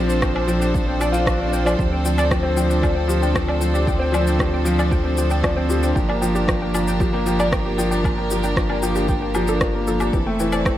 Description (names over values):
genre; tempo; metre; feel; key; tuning
piano and strings electronica; 115 BPM; 4/4; straight; G minor; A4 = 440 Hz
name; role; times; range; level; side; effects
rich chamber string section; sustained chords; 0.0-10.8 s; F3 to C5; -26 LUFS; right 2 dB; sidechain pumping
analog pluck; arpeggios; 0.0-10.7 s; G4 to G5; -28 LUFS; equal; chorus, sidechain pumping, tape echo
warm concert grand piano; riff; 0.0-10.8 s; E3 to F4; -22 LUFS; left 2 dB; tape echo
warm sub bass; bass; 0.0-10.8 s; F1 to D2; -23 LUFS; equal; sidechain pumping
electronic shaker, rim click and woodblock; drums; 0.1-10.8 s; none; -27 LUFS; equal; none
electronic kick drum; drums; 0.2-10.8 s; none; -23 LUFS; equal; none
swell; sound effects; 0.9-1.8 s; none; -32 LUFS; left 2 dB; none
room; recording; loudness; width
light reverb, digital ambience; none; -17 LUFS; side -13 dB against mid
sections
0.0-10.8 A section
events
swell 0.9-1.8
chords
0.0 Bbadd9; 1.8 Dm7; 6.0 Gm7; 10.1 Fmaj7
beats
0.22 0.74 1.26 | 1.79 2.31 2.83 3.35 | 3.87 4.39 4.92 5.44 | 5.96 6.48 7.00 7.53 | 8.05 8.57 9.09 9.61 | 10.13 10.66